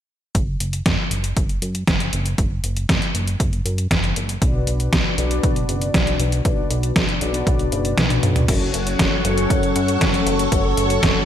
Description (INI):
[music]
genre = italo disco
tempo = 118 BPM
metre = 4/4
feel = straight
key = F# minor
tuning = A4 = 441 Hz
[part]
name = chorused synth bass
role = bass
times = 0.3-11.1 s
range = F#1 to F#2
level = -23 LUFS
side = equal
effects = none
[part]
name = detuned 8-bit digital drum machine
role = drums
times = 0.3-11.1 s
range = crash cymbal, hi-hat, snare drum, toms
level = -21 LUFS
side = equal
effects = overdrive, gated reverb
[part]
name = electronic kick drum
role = drums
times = 0.3-11.1 s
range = none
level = -22 LUFS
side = equal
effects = none
[part]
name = mellow synth brass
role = stabs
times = 4.4-11.2 s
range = B2 to D5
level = -23 LUFS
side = left 3 dB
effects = chorus, ping-pong delay
[part]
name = string machine, full ensemble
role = sustained chords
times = 8.5-11.2 s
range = A4 to C#6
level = -23 LUFS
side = equal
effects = ensemble chorus
[sound]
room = moderate lush hall reverb, RT60 1.9 s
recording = bright 1980s-style digital production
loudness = -17 LUFS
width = side -10 dB against mid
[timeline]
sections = 0.3-8.5 A section; 8.5-11.2 B section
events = filter sweep on analog synth bass 0.3-8.5; kick drops out 8.0-8.5; drum fill 8.0-8.5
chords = 0.3 N.C.; 4.4 Bm; 8.5 F#m